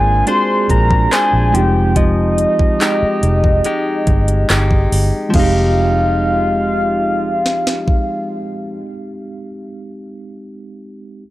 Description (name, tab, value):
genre	contemporary R&B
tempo	71 BPM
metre	4/4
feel	straight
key	F dorian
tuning	A4 = 436 Hz
part	soft octave-layered synth lead	melody	0.0-8.4 s	Eb5 to C6	-18 LUFS	equal	chorus, tape echo
part	mellow tine electric piano	accompaniment	0.0-11.2 s	Ab3 to Ab4	-21 LUFS	right 2 dB	slow stereo tremolo
part	direct-recorded clean electric guitar	arpeggios	0.0-8.9 s	F3 to C5	-21 LUFS	left 2 dB	tape echo
part	vintage muted fingered electric bass	bass	0.0-8.4 s	F1 to Bb1	-16 LUFS	equal	none
part	trap drum kit	drums	0.3-8.1 s	crash cymbal, handclaps, hi-hat, kick drum, rim click, snare drum	-17 LUFS	equal	none
room	digital ambience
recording	dry, gritty hardware recording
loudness	-12 LUFS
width	side -16 dB against mid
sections	0.0-5.3 A section; 5.3-8.7 B section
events	none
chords	0.0 Bb9; 1.5 Fm9